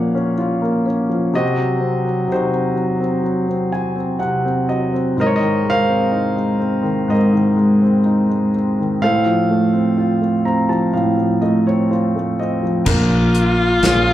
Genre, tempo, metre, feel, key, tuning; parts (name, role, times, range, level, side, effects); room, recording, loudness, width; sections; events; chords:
acoustic folk-pop ballad; 62 BPM; 4/4; straight; Bb minor; A4 = 440 Hz
warm concert grand piano; melody; 0.0-14.1 s; Ab2 to Bb5; -15 LUFS; equal; slapback echo
warm viola; second line; 12.9-14.1 s; F4; -17 LUFS; left 2 dB
woody fretless electric bass; bass; 12.9-14.1 s; Bb1; -17 LUFS; equal
natural country drum kit; drums; 12.9-14.1 s; crash cymbal, hi-hat, kick drum, snare drum; -22 LUFS; left 1 dB
moderate club reverb, RT60 0.5 s; live gig heard through the venue's PA, club reverb; -15 LUFS; side -13 dB against mid
0.0-12.9 A section; 12.9-14.1 B section
grand piano fill 3.2-5.2, 10.0-12.9
0.0 Bbm; 1.3 Cdim; 5.2 Abadd9; 9.0 F/A; 12.9 Bbm7